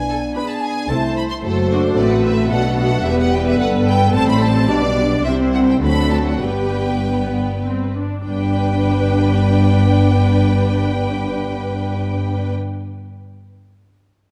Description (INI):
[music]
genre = quick classical-period movement for symphony orchestra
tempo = 95-112 BPM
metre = 3/4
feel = straight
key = G major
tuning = A4 = 440 Hz
[part]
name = rich studio violin section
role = melody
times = 0.0-12.5 s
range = C5 to C6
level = -27 LUFS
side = equal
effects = none
[part]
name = mellow French horn section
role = sustained chords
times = 0.0-12.5 s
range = F#3 to F#4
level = -24 LUFS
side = equal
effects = none
[part]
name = rich studio cello section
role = bass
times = 0.0-12.5 s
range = E2 to D3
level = -24 LUFS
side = equal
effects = none
[part]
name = rich studio double bass section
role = bass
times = 0.0-12.5 s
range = E1 to D2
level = -23 LUFS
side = equal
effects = none
[part]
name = clear studio violin section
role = second line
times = 0.1-12.5 s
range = F#4 to G5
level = -32 LUFS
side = equal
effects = none
[part]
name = warm studio viola section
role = accompaniment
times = 0.4-12.5 s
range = A3 to B4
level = -24 LUFS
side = equal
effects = none
[sound]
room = moderate scoring stage reverb, RT60 1.9 s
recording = dark, warm production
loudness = -17 LUFS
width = mono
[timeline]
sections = 0.0-8.3 A section; 8.3-12.0 B section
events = slowing down 3.9-8.3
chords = 0.0 G#dim/B; 0.9 Am/C; 1.4 F#dim; 2.5 Bm7; 3.1 Em; 4.1 Am7; 4.7 G/B; 5.3 C; 5.8 D7; 6.4 G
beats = 0.36 0.90 | 1.44 1.98 2.51 | 3.06 3.60 4.14 | 4.69 5.25 5.83 | 6.42 7.03 7.66 | 8.28 8.89 9.50 | 10.11 10.73 11.35